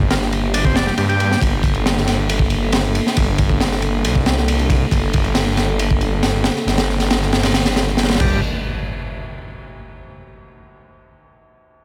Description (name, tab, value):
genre	breakbeat, breaks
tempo	137 BPM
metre	4/4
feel	straight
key	G minor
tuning	A4 = 440 Hz
part	dark analog pad	sustained chords	0.0-8.4 s	Bb3 to A4	-27 LUFS	equal	chorus, sidechain pumping
part	detuned saw bass	bass	0.0-8.4 s	F1 to G2	-22 LUFS	equal	tube saturation
part	crunchy breakbeat drum kit	drums	0.0-8.3 s	crash cymbal, kick drum, ride cymbal, snare drum	-20 LUFS	equal	none
part	combo organ	riff	0.1-1.4, 8.2-8.4 s	G3 to G4	-26 LUFS	equal	vintage 12-bit sampler grit, tape echo
part	impact	sound effects	8.2-10.0 s	none	-30 LUFS	equal	none
room	light reverb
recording	none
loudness	-17 LUFS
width	mono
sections	0.0-8.4 A section; 8.4-10.2 B section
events	none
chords	0.0 Gm; 8.4 N.C.